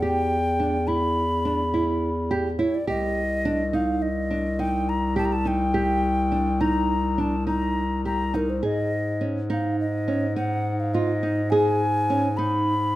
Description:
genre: contemporary instrumental, chamber music in an uneven meter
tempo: 104 BPM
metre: 5/4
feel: straight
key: unclear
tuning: A4 = 441 Hz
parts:
  - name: hollow alto ocarina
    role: melody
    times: 0.0-13.0 s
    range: Bb4 to B5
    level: -27 LUFS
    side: left 1 dB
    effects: none
  - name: nylon-string guitar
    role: arpeggios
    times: 0.0-12.7 s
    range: C#4 to G#4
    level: -27 LUFS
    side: right 2 dB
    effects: none
  - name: mellow bass clarinet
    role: bass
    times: 0.0-13.0 s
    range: C2 to G#2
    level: -25 LUFS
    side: left 1 dB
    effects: none
room: light reverb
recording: close, detailed microphones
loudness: -21 LUFS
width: side -15 dB against mid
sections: 0.0-13.0 A section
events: none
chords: 0.0 Em; 2.9 Cm7; 8.6 G#5

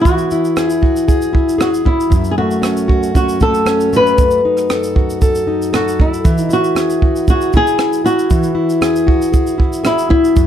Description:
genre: acoustic pop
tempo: 116 BPM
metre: 4/4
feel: straight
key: E major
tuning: A4 = 440 Hz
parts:
  - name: flamenco guitar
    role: melody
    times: 0.0-10.5 s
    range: E4 to B4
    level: -16 LUFS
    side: equal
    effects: plate reverb
  - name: fingerpicked plugged-in steel-string acoustic guitar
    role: accompaniment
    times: 0.0-10.5 s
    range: F#2 to A4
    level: -16 LUFS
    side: left 1 dB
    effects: none
  - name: compact cocktail drum kit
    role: drums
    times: 0.1-10.5 s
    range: kick drum, rim click, shaker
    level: -15 LUFS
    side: right 1 dB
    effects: none
room: light reverb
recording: dark, warm production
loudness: -12 LUFS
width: side -10 dB against mid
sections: 0.0-10.5 A section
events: none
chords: 0.0 Eadd9; 2.1 F#m; 4.2 B7/F#; 6.2 Eadd9

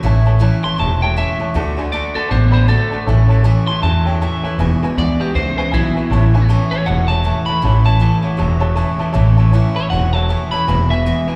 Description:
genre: rockabilly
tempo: 158 BPM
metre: 4/4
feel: swing 60% on 8ths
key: A major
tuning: A4 = 441 Hz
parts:
  - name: dark upright piano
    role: accompaniment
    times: 0.0-11.4 s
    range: B4 to B5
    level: -29 LUFS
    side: equal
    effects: slapback echo
  - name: picked steel-string acoustic guitar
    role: accompaniment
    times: 0.0-11.4 s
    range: E2 to F#4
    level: -24 LUFS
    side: equal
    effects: none
  - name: electric guitar through a small old amp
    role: riff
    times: 0.0-11.4 s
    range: E2 to B3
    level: -26 LUFS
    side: equal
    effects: subtle chorus
  - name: upright bass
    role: bass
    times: 0.0-11.3 s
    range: E1 to E2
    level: -17 LUFS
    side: equal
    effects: none
  - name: electric guitar at the edge of break-up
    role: melody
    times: 0.6-11.3 s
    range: E4 to C6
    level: -24 LUFS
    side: equal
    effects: slapback echo, digital delay
room: light reverb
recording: live gig heard through the venue's PA, recital hall reverb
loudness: -16 LUFS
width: mono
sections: 0.0-11.4 A section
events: none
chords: 0.0 A; 1.6 D; 3.1 A; 4.6 E7; 6.1 A; 10.7 E7

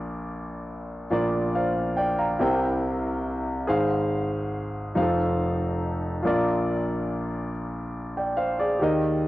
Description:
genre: gospel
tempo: 47 BPM (dotted quarters)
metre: 6/8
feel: straight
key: unclear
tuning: A4 = 439 Hz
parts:
  - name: warm concert grand piano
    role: solo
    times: 0.0-9.3 s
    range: F1 to Bb5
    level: -24 LUFS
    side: equal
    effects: cassette tape
room: moderate spring reverb, RT60 1.6 s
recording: home recording on cassette, nothing above 10.3 kHz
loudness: -23 LUFS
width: side -16 dB against mid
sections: 0.0-9.3 A section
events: none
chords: 0.0 Bb; 2.4 C7; 3.7 Fm/Ab; 5.0 F7; 6.2 Bb

